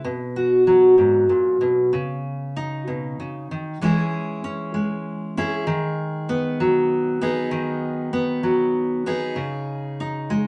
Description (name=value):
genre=folk, solo fingerstyle acoustic guitar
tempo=64 BPM (dotted quarters)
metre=6/8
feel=straight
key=B major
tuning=A4 = 441 Hz
part: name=fingerpicked steel-string acoustic guitar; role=solo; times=0.0-10.5 s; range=G#2 to G#4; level=-22 LUFS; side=equal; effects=none
room=wet club reverb, RT60 0.8 s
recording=none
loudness=-22 LUFS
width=mono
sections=0.0-1.9 A section; 1.9-10.5 B section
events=none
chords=0.0 B5; 1.9 C#sus2; 3.8 E6; 5.7 B6/D#; 9.4 C#sus2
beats=| 0.04 0.98 | 1.93 2.87 | 3.81 4.74 | 5.67 6.59 | 7.51 8.44 | 9.38 10.31